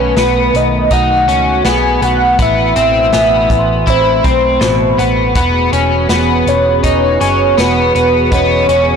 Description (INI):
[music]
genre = dream pop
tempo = 81 BPM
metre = 4/4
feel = straight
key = E major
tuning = A4 = 439 Hz
[part]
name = warm velvety synth lead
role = melody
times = 0.0-9.0 s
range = B4 to G#5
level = -13 LUFS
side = right 1 dB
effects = chorus, tremolo, ping-pong delay
[part]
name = hollow soft pad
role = sustained chords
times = 0.0-9.0 s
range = B2 to B4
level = -20 LUFS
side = right 2 dB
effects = chorus
[part]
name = electric guitar at the edge of break-up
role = arpeggios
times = 0.0-9.0 s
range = B2 to E4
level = -15 LUFS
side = left 3 dB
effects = analog chorus, ping-pong delay
[part]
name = vintage muted picked electric bass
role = bass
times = 0.0-9.0 s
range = E1 to C#2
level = -17 LUFS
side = right 1 dB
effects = none
[part]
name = celesta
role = texture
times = 0.0-9.0 s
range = D#5 to C6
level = -28 LUFS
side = right 2 dB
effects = none
[part]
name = vintage drum kit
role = drums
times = 0.2-8.9 s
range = hi-hat, kick drum, snare drum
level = -19 LUFS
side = equal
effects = none
[sound]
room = moderate lush hall reverb, RT60 2.8 s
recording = blown-out, overdriven recording, overdrive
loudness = -9 LUFS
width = side -6 dB against mid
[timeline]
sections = 0.0-9.0 A section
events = none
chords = 0.0 B7; 2.4 Amadd9; 5.4 Eadd9